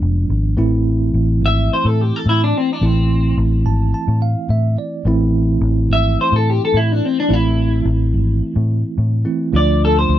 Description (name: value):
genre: straight-eighth soul blues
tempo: 107 BPM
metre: 4/4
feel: straight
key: A harmonic minor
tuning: A4 = 440 Hz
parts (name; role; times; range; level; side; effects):
- bell-like tine electric piano; accompaniment; 0.0-10.2 s; E3 to A5; -20 LUFS; right 3 dB; fast stereo tremolo
- vintage muted fingered electric bass; bass; 0.0-10.2 s; F1 to A2; -16 LUFS; left 1 dB; none
- clean electric guitar; melody; 1.5-10.2 s; C4 to E5; -18 LUFS; left 2 dB; analog chorus
room: little or no reverb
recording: dry, close 1970s-style studio recording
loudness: -14 LUFS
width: side -12 dB against mid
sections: 0.6-10.2 A section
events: tine electric piano fill 3.4-5.0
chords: 0.0 E7b9 (rootless); 0.6 Am; 9.5 Dm